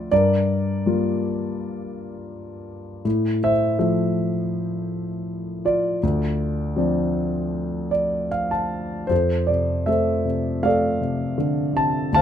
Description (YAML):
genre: classical, lyrical solo piano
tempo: 80 BPM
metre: 4/4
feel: rubato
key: unclear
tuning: A4 = 440 Hz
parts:
  - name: dark concert grand piano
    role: solo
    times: 0.0-12.2 s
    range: D2 to A5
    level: -20 LUFS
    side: equal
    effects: none
room: little or no reverb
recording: close, detailed microphones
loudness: -20 LUFS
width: side -9 dB against mid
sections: 0.0-9.1 A section; 9.1-12.2 B section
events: grand piano fill 7.5-9.1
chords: 0.1 Gm7; 3.0 Fmaj7/A; 6.0 Dm7; 9.1 F6